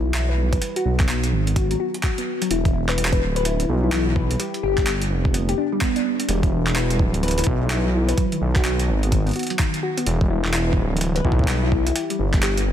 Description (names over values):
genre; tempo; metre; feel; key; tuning
IDM; 127 BPM; 4/4; swing 62% on 16ths; unclear; A4 = 440 Hz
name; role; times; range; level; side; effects
harp-like synth pluck; arpeggios; 0.0-12.7 s; D3 to B4; -24 LUFS; left 2 dB; chorus, phaser, digital delay
dark detuned saw bass; bass; 0.0-12.7 s; D1 to B1; -22 LUFS; equal; none
jungle sampler-style drum kit; drums; 0.1-12.6 s; handclaps, hi-hat; -27 LUFS; right 1 dB; overdrive, digital delay
electronic kick drum; drums; 0.5-12.4 s; none; -21 LUFS; equal; overdrive
room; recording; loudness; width
light reverb; dense, heavily limited modern master; -19 LUFS; side -10 dB against mid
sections
0.0-12.7 A section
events
none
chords
0.0 Em; 0.6 B5; 2.5 Em; 4.4 G; 6.3 Em; 8.2 B6; 10.1 Em; 12.0 G5